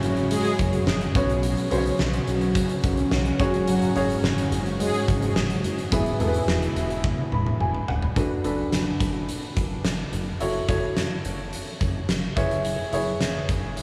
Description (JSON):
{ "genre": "1980s-style pop", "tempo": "107 BPM", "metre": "4/4", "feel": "straight", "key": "F# minor", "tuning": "A4 = 440 Hz", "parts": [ { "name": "warm baby grand piano", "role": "accompaniment", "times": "0.0-13.8 s", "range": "B2 to B5", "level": "-30 LUFS", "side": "equal", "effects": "lush chorus" }, { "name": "warm analog pad", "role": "sustained chords", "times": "0.0-8.1 s", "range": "G#2 to F#4", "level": "-30 LUFS", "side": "equal", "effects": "chorus" }, { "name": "mellow synth brass", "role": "stabs", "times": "0.0-5.0 s", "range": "E3 to G#4", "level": "-33 LUFS", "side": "equal", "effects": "chorus, analog delay" }, { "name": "chorused synth bass", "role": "bass", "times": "0.0-13.8 s", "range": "E1 to B1", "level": "-31 LUFS", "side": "equal", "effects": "none" }, { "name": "huge arena drum kit", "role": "drums", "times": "0.0-13.8 s", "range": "hi-hat, kick drum, snare drum, toms", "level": "-29 LUFS", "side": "equal", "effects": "none" } ], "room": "moderate huge ambient reverb, RT60 9.0 s", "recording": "dreamy mix soaked in reverb, studio ambience", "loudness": "-24 LUFS", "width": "mono", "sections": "0.0-8.2 A section; 8.2-13.8 B section", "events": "drum fill 7.0-8.2; grand piano fill 7.0-8.2", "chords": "0.0 F#sus2; 1.2 Bsus2; 3.4 F#sus2; 5.9 E; 8.2 Bm7/F#; 10.4 F#m7; 12.4 C#m7/F#" }